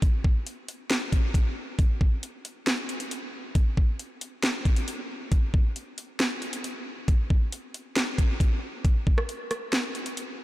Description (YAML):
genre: hip hop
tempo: 136 BPM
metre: 4/4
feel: half-time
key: none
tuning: none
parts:
  - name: trap drum kit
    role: drums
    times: 0.0-10.3 s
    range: hi-hat, kick drum, rim click, snare drum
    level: -24 LUFS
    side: equal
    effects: none
room: light reverb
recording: blown-out, overdriven recording, overdrive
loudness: -24 LUFS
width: side -17 dB against mid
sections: 0.0-8.8 A section; 8.8-10.4 B section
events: none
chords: none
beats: | 0.02 0.46 0.91 1.35 | 1.79 2.23 2.67 3.11 | 3.55 3.99 4.43 4.88 | 5.32 5.76 6.20 6.64 | 7.08 7.52 7.96 8.40 | 8.85 9.29 9.73 10.17